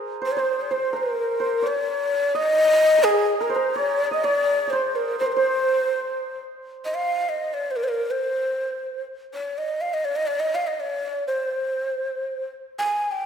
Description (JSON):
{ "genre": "Persian modal ensemble", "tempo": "84 BPM (dotted quarters)", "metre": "6/8", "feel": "straight", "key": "C dastgah shur", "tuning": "A4 = 440 Hz", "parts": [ { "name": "santur", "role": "second line", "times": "0.0-8.0 s", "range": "Ab4 to Eb5", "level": "-28 LUFS", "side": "right 4 dB", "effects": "none" }, { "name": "breathy ney", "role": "melody", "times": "0.3-13.3 s", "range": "Ab4 to Ab5", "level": "-22 LUFS", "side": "left 1 dB", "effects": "none" } ], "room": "moderate scoring stage reverb, RT60 2.0 s", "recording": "minimal, uncompressed stereo recording", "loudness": "-21 LUFS", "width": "side -7 dB against mid", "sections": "0.0-6.6 A section; 6.6-13.3 B section", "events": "none", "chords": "none" }